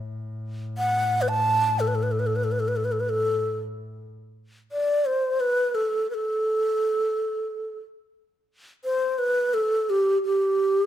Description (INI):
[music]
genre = Arabic maqam ensemble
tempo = 87 BPM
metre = 3/4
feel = straight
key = unclear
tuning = A4 = 438 Hz
[part]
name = rich double bass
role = drone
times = 0.0-4.1 s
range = A2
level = -30 LUFS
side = left 1 dB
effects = none
[part]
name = breathy mellow low ney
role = melody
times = 0.8-10.9 s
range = G4 to A5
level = -22 LUFS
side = equal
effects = none
[sound]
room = moderate recital hall reverb, RT60 1.4 s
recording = close, detailed microphones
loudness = -22 LUFS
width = side -11 dB against mid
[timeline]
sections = 0.0-4.0 A section; 4.0-10.9 B section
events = none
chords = none